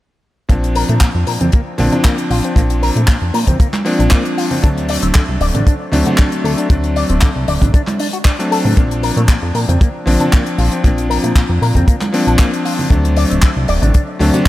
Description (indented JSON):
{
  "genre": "nu-disco, nu disco",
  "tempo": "116 BPM",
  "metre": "4/4",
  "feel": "straight",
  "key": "Bb major",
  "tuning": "A4 = 440 Hz",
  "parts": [
    { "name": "bright electric grand piano", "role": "accompaniment", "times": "0.5-14.5 s", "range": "F3 to D4", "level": "-18 LUFS", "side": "left 1 dB", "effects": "vintage 12-bit sampler grit, sidechain pumping, diffuse ambient delay" },
    { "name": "electric guitar with an envelope filter", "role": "riff", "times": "0.5-14.5 s", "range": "Bb2 to D5", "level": "-22 LUFS", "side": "left 2 dB", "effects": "analog chorus, diffuse ambient delay" },
    { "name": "chorused synth bass", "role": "bass", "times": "0.5-14.3 s", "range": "D1 to Bb2", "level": "-16 LUFS", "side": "equal", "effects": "sidechain pumping" },
    { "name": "kick drum", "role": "drums", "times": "0.5-14.5 s", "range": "none", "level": "-11 LUFS", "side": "equal", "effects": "none" },
    { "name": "tight funk drum kit", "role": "drums", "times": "0.5-14.5 s", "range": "handclaps, hi-hat", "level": "-22 LUFS", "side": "left 1 dB", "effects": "none" },
    { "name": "congas", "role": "percussion", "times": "1.4-14.4 s", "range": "none", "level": "-24 LUFS", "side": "right 2 dB", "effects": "none" }
  ],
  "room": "light reverb, small room ambience",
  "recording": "none",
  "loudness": "-12 LUFS",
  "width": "side -16 dB against mid",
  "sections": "0.5-14.5 A section",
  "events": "none",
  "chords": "0.5 Bb; 4.6 D7; 8.8 Bb; 12.9 D7"
}